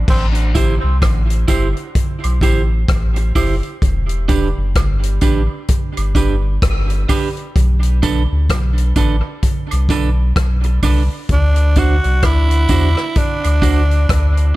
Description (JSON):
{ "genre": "dub reggae", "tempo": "64 BPM", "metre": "4/4", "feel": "swing 60% on 16ths", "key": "A dorian", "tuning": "A4 = 440 Hz", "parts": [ { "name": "warm sub bass", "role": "bass", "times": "0.0-14.5 s", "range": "E1 to E2", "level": "-15 LUFS", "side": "equal", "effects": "none" }, { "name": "growling tenor saxophone", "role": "melody", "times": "0.1-0.3, 11.3-14.6 s", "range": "C4 to F#4", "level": "-22 LUFS", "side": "right 2 dB", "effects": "dub echo" }, { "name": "vintage drum kit", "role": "drums", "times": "0.1-14.5 s", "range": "crash cymbal, hi-hat, kick drum, rim click", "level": "-18 LUFS", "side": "equal", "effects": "none" }, { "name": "electric guitar at the edge of break-up", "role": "accompaniment", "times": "0.5-13.8 s", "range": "D4 to C5", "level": "-22 LUFS", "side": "right 5 dB", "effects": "spring reverb, dub echo" }, { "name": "tambourine and woodblock", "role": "percussion", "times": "0.5-13.9 s", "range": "none", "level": "-32 LUFS", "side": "right 6 dB", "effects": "dub echo" } ], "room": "small room ambience", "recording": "echo-heavy mix", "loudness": "-13 LUFS", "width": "side -18 dB against mid", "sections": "0.1-14.6 A section", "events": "break 0.1-11.3", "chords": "0.1 Am7; 3.8 Em7; 7.6 Bm7; 11.3 D7", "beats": "| 0.08 1.02 1.95 2.89 | 3.82 4.76 5.69 6.62 | 7.56 8.49 9.43 10.36 | 11.29 12.23 13.16 14.09" }